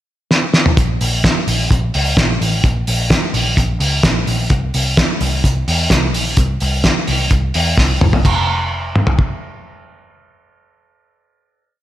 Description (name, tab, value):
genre	jangly indie pop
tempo	128 BPM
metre	4/4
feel	straight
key	F major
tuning	A4 = 440 Hz
part	cloth-damped thuddy drum kit	drums	0.3-9.3 s	crash cymbal, hi-hat, kick drum, snare drum, toms	-14 LUFS	equal	none
part	vintage muted picked electric bass	bass	0.8-11.7 s	F1 to E2	-18 LUFS	equal	none
room	light reverb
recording	none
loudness	-13 LUFS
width	side -13 dB against mid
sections	0.0-0.8 pickup bar; 0.8-8.3 bridge; 8.3-11.8 final note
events	drum fill 0.3-0.8, 7.8-8.3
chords	none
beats	0.30 | 0.77 1.24 1.71 2.17 | 2.64 3.11 3.57 4.04 | 4.51 4.97 5.44 5.91 | 6.38 6.85 7.32 7.78 | 8.25 8.72 9.19 9.66 | 10.13 10.60 11.06 11.53